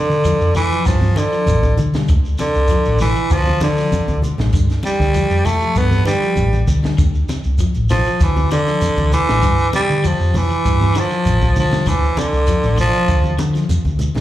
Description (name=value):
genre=afrobeat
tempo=98 BPM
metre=4/4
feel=straight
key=D minor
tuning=A4 = 444 Hz
part: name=raspy baritone saxophone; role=melody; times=0.0-13.4 s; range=D3 to B3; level=-18 LUFS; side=right 1 dB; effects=slapback echo
part: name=electric guitar at the edge of break-up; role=arpeggios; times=0.0-14.2 s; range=C3 to G3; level=-26 LUFS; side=left 6 dB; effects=tremolo, slapback echo
part: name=hollow-body short-scale fingered electric bass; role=bass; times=0.1-14.2 s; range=A1 to D3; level=-17 LUFS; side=equal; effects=none
part: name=shekere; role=percussion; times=0.1-14.2 s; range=none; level=-25 LUFS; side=equal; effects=none
part: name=congas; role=percussion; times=0.2-14.2 s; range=none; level=-23 LUFS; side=equal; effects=slapback echo
part: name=compact cocktail drum kit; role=drums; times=0.3-14.2 s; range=hi-hat, kick drum, snare drum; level=-21 LUFS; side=equal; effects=none
room=small room ambience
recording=live gig heard through the venue's PA, club reverb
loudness=-14 LUFS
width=side -14 dB against mid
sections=0.0-14.2 A section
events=baritone saxophone solo 0.0-14.2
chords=0.0 Dm7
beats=0.26 0.87 1.48 | 2.09 2.71 3.32 3.93 | 4.54 5.15 5.76 6.38 | 6.99 7.60 8.21 8.82 | 9.43 10.04 10.65 11.26 | 11.87 12.48 13.09 13.70